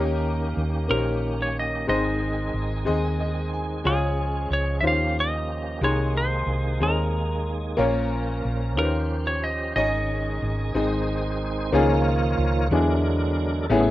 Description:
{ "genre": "slow gospel", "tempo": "61 BPM (dotted quarters)", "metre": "6/8", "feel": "straight", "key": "unclear", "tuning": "A4 = 440 Hz", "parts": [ { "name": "clear upright piano", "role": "accompaniment", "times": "0.0-13.9 s", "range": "Ab2 to C6", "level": "-26 LUFS", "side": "left 3 dB", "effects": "none" }, { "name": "tonewheel organ", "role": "sustained chords", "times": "0.0-13.9 s", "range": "C#3 to Db5", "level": "-29 LUFS", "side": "right 2 dB", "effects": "chorus vibrato, fast rotary speaker" }, { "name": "hollow-body short-scale fingered electric bass", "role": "bass", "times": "0.0-13.9 s", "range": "Ab1 to E2", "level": "-26 LUFS", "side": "equal", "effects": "none" }, { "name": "clean lap steel guitar", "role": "melody", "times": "0.9-11.4 s", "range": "Ab4 to F5", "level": "-28 LUFS", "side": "right 1 dB", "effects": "none" } ], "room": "light reverb", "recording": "rough home demo mix", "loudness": "-22 LUFS", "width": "side -15 dB against mid", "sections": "0.0-11.7 A section; 11.7-13.9 B section", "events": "upright piano fill 2.9-3.9; tonewheel organ solo 11.7-13.9", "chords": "0.0 Eb7; 1.9 Ab; 3.9 Db; 4.8 Eb13; 5.8 Ab/C; 7.8 Bbm; 8.8 Eb13; 9.8 Absus4; 10.8 Ab; 11.7 Db69; 12.7 E7" }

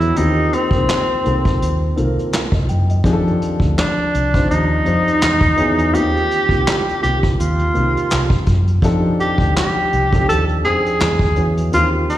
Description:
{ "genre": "R&B, neo-soul", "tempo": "83 BPM", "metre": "4/4", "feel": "swing 59% on 16ths", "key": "Eb lydian", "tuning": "A4 = 439 Hz", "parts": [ { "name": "breathy tenor saxophone", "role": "melody", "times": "0.0-12.2 s", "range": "C4 to A4", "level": "-18 LUFS", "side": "equal", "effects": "slapback echo" }, { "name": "dark concert grand piano", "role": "accompaniment", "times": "0.0-12.2 s", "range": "Eb3 to G5", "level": "-21 LUFS", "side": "left 2 dB", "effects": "slapback echo" }, { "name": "vintage muted fingered electric bass", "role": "bass", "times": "0.0-12.1 s", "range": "C2 to Gb2", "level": "-18 LUFS", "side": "equal", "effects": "none" }, { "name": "vintage brush drum kit", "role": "drums", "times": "0.0-12.2 s", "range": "handclaps, hi-hat, kick drum, snare drum", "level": "-20 LUFS", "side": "equal", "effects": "none" } ], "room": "light reverb", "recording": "live gig heard through the venue's PA, recital hall reverb", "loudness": "-14 LUFS", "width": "side -13 dB against mid", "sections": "0.0-12.2 A section", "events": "none", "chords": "0.2 Eb6; 3.0 F13; 5.2 E6; 5.9 Eb6; 8.8 F13; 11.0 E6" }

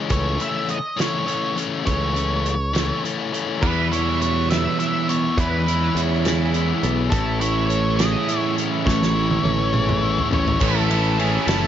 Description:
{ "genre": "indie rock", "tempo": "69 BPM (dotted quarters)", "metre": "6/8", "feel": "straight", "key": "unclear", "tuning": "A4 = 440 Hz", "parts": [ { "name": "biting overdriven guitar", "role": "riff", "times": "0.0-11.7 s", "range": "A2 to C#5", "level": "-24 LUFS", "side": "left 5 dB", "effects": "none" }, { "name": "octave-fuzz lead guitar", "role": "melody", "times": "0.1-11.7 s", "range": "G#4 to E5", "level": "-26 LUFS", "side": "right 1 dB", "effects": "distortion, analog delay" }, { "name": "modern bright picked electric bass", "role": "bass", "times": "0.1-11.7 s", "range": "F#1 to E2", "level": "-23 LUFS", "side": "equal", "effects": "none" }, { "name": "loose indie drum kit", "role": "drums", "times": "0.1-11.6 s", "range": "crash cymbal, hi-hat, kick drum, ride cymbal, snare drum, toms", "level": "-25 LUFS", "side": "right 1 dB", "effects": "none" }, { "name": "cranked stack guitar", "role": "riff", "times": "3.6-11.7 s", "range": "E2 to E4", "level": "-25 LUFS", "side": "right 10 dB", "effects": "overdrive, analog chorus" }, { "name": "combo organ", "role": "sustained chords", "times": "7.1-11.7 s", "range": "E4 to C#6", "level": "-36 LUFS", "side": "left 1 dB", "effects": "none" }, { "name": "tube shaker", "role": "percussion", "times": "10.6-11.6 s", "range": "none", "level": "-45 LUFS", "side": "right 18 dB", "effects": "none" } ], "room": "small room ambience", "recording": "nothing above 7.5 kHz", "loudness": "-18 LUFS", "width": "side -10 dB against mid", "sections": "0.0-3.6 A section; 3.6-10.6 B section; 10.6-11.7 C section", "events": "drum fill 8.9-10.6", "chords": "0.1 A/C#; 3.6 Em6; 5.4 C#m7/E; 7.1 Amaj7; 10.6 Aadd9" }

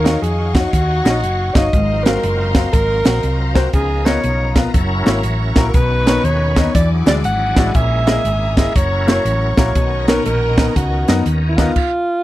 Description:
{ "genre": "uptempo gospel", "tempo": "120 BPM", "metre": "4/4", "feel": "swing 65% on 8ths", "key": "unclear", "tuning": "A4 = 440 Hz", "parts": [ { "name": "warm alto saxophone", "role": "melody", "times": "0.0-12.2 s", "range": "E4 to F#5", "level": "-20 LUFS", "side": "right 1 dB", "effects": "none" }, { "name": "clear baby grand piano", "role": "accompaniment", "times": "0.0-11.7 s", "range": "G#2 to F#5", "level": "-22 LUFS", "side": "left 4 dB", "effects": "none" }, { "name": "bright tonewheel organ", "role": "sustained chords", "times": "0.0-11.8 s", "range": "D#3 to E#5", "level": "-26 LUFS", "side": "right 2 dB", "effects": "slow rotary speaker, chorus vibrato" }, { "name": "warm studio string section", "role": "sustained chords", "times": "0.0-11.7 s", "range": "F#4 to D#6", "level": "-30 LUFS", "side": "left 3 dB", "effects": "none" }, { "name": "hollow-body short-scale fingered electric bass", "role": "bass", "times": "0.0-11.7 s", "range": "F#1 to F#2", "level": "-18 LUFS", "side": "equal", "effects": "none" }, { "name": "crisp fusion drum kit", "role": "drums", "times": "0.1-11.9 s", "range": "crash cymbal, hi-hat, kick drum, snare drum", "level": "-16 LUFS", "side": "right 1 dB", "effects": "none" } ], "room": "little or no reverb", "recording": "dry, close 1970s-style studio recording", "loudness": "-13 LUFS", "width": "side -15 dB against mid", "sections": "0.0-12.2 A section", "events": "none", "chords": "0.0 D#m9; 1.7 G#13; 3.7 C#13; 4.7 F#7; 5.7 Bmaj9; 6.7 E9; 7.7 C#m69; 8.8 F#7; 9.8 Bmaj9" }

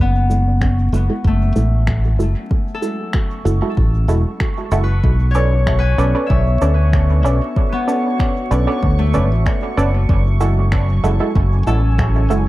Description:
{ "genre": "ambient dub", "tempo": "95 BPM", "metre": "4/4", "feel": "straight", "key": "F# minor", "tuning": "A4 = 440 Hz", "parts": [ { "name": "warm analog pad", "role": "sustained chords", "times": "0.0-12.5 s", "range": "F#3 to G#5", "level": "-29 LUFS", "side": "equal", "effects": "chorus" }, { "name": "concert harp", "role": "arpeggios", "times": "0.0-12.5 s", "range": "A3 to G#5", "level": "-24 LUFS", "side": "left 3 dB", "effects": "dub echo" }, { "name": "modern bright fingered electric bass", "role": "bass", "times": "0.0-12.4 s", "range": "E1 to D2", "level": "-15 LUFS", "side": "equal", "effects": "tube saturation" }, { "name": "bubbling stepped-filter texture", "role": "texture", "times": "0.6-12.5 s", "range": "C#6", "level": "-33 LUFS", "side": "right 6 dB", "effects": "chorus, built-in reverb" }, { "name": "filtered dub chord stab", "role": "stabs", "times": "0.3-12.4 s", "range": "G#3 to D5", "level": "-22 LUFS", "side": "right 2 dB", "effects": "chorus, dub echo" }, { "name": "cabasa and finger snaps", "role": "drums", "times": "0.3-12.4 s", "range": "none", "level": "-30 LUFS", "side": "equal", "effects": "dub echo" }, { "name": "electronic kick drum", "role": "drums", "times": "0.6-12.1 s", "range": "none", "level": "-18 LUFS", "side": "equal", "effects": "none" } ], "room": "light reverb", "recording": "vinyl crackle", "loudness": "-14 LUFS", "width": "side -17 dB against mid", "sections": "0.0-12.5 A section", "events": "fade-in on analog synth pad 0.0-12.5", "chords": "0.0 F#m9; 5.0 Bm9; 10.1 F#m9" }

